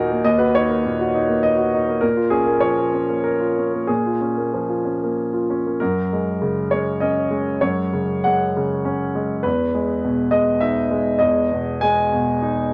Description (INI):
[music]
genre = neoclassical minimalist piano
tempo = 92-103 BPM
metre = 3/4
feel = rubato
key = unclear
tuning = A4 = 441 Hz
[part]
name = clear concert grand piano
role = solo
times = 0.0-12.7 s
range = Eb2 to G#5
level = -20 LUFS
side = equal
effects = none
[sound]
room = light reverb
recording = none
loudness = -20 LUFS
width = mono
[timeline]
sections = 0.0-5.8 A section; 5.8-12.7 B section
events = none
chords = 0.0 Ebm; 2.0 Bbm7; 5.8 Gbadd9; 9.4 Emaj7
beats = | 0.25 0.84 1.43 | 2.02 2.63 3.24 | 3.88 4.53 5.16 | 5.80 6.41 7.01 | 7.62 8.25 8.86 | 9.45 10.03 10.62 | 11.21 11.82 12.42